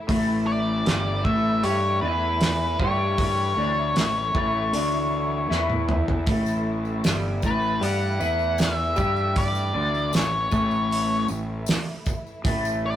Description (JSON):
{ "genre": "psychedelic rock", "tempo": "78 BPM", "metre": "4/4", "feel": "straight", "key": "A mixolydian", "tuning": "A4 = 440 Hz", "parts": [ { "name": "warm studio string section", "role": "sustained chords", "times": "0.0-13.0 s", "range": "E3 to E4", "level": "-35 LUFS", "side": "equal", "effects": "none" }, { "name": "electric guitar through a small old amp", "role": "riff", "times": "0.1-13.0 s", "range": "G2 to G4", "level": "-26 LUFS", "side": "left 2 dB", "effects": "rotary speaker" }, { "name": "fuzz fingered electric bass", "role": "bass", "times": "0.1-13.0 s", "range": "G1 to G2", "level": "-28 LUFS", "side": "equal", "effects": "overdrive" }, { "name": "cloth-damped thuddy drum kit", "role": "drums", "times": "0.1-12.6 s", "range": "hi-hat, kick drum, snare drum, toms", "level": "-25 LUFS", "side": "right 1 dB", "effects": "none" }, { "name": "octave-fuzz lead guitar", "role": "melody", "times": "0.5-13.0 s", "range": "B4 to F#5", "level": "-26 LUFS", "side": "left 2 dB", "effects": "distortion" }, { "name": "tambourine", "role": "percussion", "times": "6.3-12.8 s", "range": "none", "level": "-43 LUFS", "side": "left 5 dB", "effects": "none" } ], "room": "light reverb", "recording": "rough rehearsal-room recording, warm saturation", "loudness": "-21 LUFS", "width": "side -11 dB against mid", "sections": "0.0-13.0 A section", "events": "drum fill 5.5-6.3", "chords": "0.0 A" }